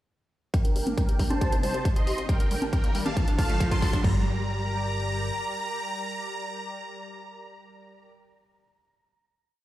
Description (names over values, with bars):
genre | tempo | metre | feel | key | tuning
uplifting trance | 137 BPM | 4/4 | straight | G minor | A4 = 440 Hz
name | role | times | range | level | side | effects
supersaw chords | melody | 0.5-8.1 s | Bb4 to C6 | -32 LUFS | right 1 dB | wide subtle chorus, sidechain pumping, low-pass filter, dub echo
analog string pad | sustained chords | 0.5-8.1 s | C3 to D5 | -37 LUFS | equal | ensemble chorus, sidechain pumping
liquid acid bass | arpeggios | 0.5-4.2 s | F3 to G4 | -34 LUFS | left 1 dB | wide subtle chorus, sidechain pumping, dub echo
electronic kick drum | drums | 0.5-4.1 s | none | -24 LUFS | equal | overdrive
punchy analog drum machine | drums | 0.5-4.1 s | congas, crash cymbal, hi-hat | -35 LUFS | equal | none
riser | sound effects | 2.2-4.0 s | none | -36 LUFS | right 2 dB | none
plucky analog bass | bass | 0.6-5.3 s | G1 to G2 | -32 LUFS | equal | sidechain pumping, high-pass filter
room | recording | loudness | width
light reverb | played on a big sound system in a bare room, stone room reverb | -24 LUFS | side -15 dB against mid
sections
0.5-4.0 build; 4.0-7.5 final chord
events
build-up 0.5-4.0; filter sweep on supersaw synth 0.5-4.0; filter sweep on acid bass 0.5-4.0; riser 2.2-4.0; drum fill 2.3-4.0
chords
0.5 Gm; 1.4 Cm; 2.3 Gm; 3.2 Dm; 4.0 Gm